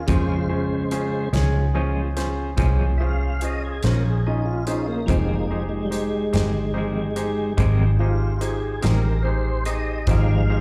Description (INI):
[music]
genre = slow blues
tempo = 48 BPM (dotted quarters)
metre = 12/8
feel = straight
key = F minor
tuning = A4 = 439 Hz
[part]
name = tonewheel organ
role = sustained chords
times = 0.0-10.6 s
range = Db3 to F5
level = -29 LUFS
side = equal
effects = slow rotary speaker, overdrive, chorus vibrato
[part]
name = vintage muted fingered electric bass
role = bass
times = 0.0-10.6 s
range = F1 to F2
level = -24 LUFS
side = equal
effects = none
[part]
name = bright upright piano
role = accompaniment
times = 0.1-10.6 s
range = Db4 to Eb5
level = -31 LUFS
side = equal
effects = slapback echo
[part]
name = semi-hollow electric guitar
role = accompaniment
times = 0.1-10.3 s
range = F2 to Db4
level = -32 LUFS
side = equal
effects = tremolo, slapback echo
[part]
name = natural country drum kit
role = drums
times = 0.1-10.3 s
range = hi-hat, kick drum, snare drum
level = -30 LUFS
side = equal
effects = none
[sound]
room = studio reverb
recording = live gig heard through the venue's PA, recital hall reverb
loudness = -22 LUFS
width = mono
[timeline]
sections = 0.0-10.6 A section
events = tonewheel organ solo 0.0-10.6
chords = 0.0 Bbm7; 5.1 Fm7